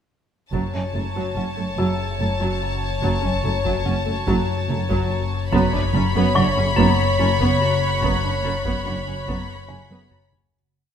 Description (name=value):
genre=cinematic, suspense film score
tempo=72 BPM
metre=3/4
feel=straight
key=F# minor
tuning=A4 = 441 Hz
part: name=rich studio violin section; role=melody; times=0.5-10.3 s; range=A5 to B5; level=-28 LUFS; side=left 2 dB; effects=none
part: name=warm symphonic violin section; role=second line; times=0.5-10.3 s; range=C#5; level=-26 LUFS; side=left 2 dB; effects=none
part: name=dark studio viola section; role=accompaniment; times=0.5-10.1 s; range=F#3 to D4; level=-27 LUFS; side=right 2 dB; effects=none
part: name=marimba with hard mallets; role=riff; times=0.5-10.4 s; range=F#2 to F#3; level=-25 LUFS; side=left 4 dB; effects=none
part: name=warm symphonic cello section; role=bass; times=0.5-10.0 s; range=F#2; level=-27 LUFS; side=right 3 dB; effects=none
part: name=warm symphonic double bass section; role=bass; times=0.5-9.8 s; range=F#1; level=-26 LUFS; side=right 4 dB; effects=none
part: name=organ-like drone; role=drone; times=0.5-10.5 s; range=F#1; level=-31 LUFS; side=right 1 dB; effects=ensemble chorus, built-in reverb
part: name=taiko ensemble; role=drums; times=0.5-10.7 s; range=none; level=-31 LUFS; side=equal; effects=none
part: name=felt-muted upright piano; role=texture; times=1.8-10.6 s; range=G#5 to E6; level=-30 LUFS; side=left 2 dB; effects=none
part: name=timpani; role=percussion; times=5.5-6.7 s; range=F#2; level=-33 LUFS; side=left 1 dB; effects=none
part: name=warm studio violin section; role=texture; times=5.5-10.1 s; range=B5 to F#6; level=-35 LUFS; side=equal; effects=none
room=moderate scoring stage reverb, RT60 1.9 s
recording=close, detailed microphones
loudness=-19 LUFS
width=side -8 dB against mid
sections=0.5-10.5 A section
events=fade-out 8.0-10.5; drum fill 9.9-10.5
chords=0.5 F#m; 5.5 Bsus2/F#